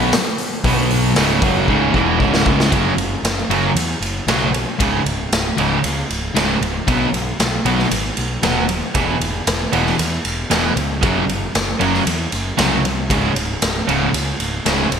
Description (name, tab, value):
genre	hard rock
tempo	116 BPM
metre	4/4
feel	straight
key	C# minor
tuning	A4 = 441 Hz
part	cranked stack guitar	riff	0.0-14.9 s	C#2 to B3	-21 LUFS	right 8 dB	overdrive, lush chorus
part	sludgy distorted guitar	riff	0.0-14.9 s	C#2 to B3	-22 LUFS	left 8 dB	overdrive
part	fuzz picked electric bass	bass	0.0-15.0 s	C#1 to E2	-24 LUFS	equal	overdrive
part	raw garage drum kit	drums	0.1-15.0 s	hi-hat, kick drum, ride cymbal, snare drum	-20 LUFS	equal	gated reverb
room	moderate lush hall reverb, RT60 2.1 s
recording	bright 1980s-style digital production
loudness	-15 LUFS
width	side -7 dB against mid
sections	0.0-2.7 A section; 2.7-15.0 B section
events	drum fill 1.7-2.7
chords	0.0 B5; 1.2 C#m; 2.7 F#5; 4.8 C#5; 6.9 B; 8.9 E5; 11.0 F#5; 13.1 C#5